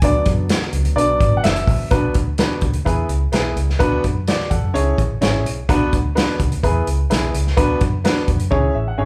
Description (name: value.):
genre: uptempo 1960s-style soul.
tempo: 127 BPM.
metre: 4/4.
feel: straight.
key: B dorian.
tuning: A4 = 440 Hz.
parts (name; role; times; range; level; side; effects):
warm upright piano; accompaniment; 0.0-9.1 s; D3 to G#5; -23 LUFS; equal; none.
vintage muted fingered electric bass; bass; 0.0-9.1 s; F#1 to F#2; -23 LUFS; equal; none.
natural country drum kit; drums; 0.0-8.6 s; hi-hat, kick drum, snare drum; -22 LUFS; equal; none.
room: moderate large studio reverb, RT60 0.9 s.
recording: band playing live in one room.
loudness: -18 LUFS.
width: mono.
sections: 0.0-1.9 A section; 1.9-9.1 B section.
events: upright piano solo 0.0-1.9; drum fill 8.5-9.1; upright piano fill 8.5-9.1.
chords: 0.0 Bm/D; 1.0 Bm; 2.9 E; 3.8 Bm/D; 4.7 C#m; 5.7 Bm; 6.6 E; 7.6 Bm/D; 8.5 C#m.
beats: | 0.03 0.50 0.97 1.44 | 1.91 2.38 2.86 3.33 | 3.80 4.27 4.74 5.21 | 5.69 6.16 6.63 7.10 | 7.57 8.04 8.52 8.99.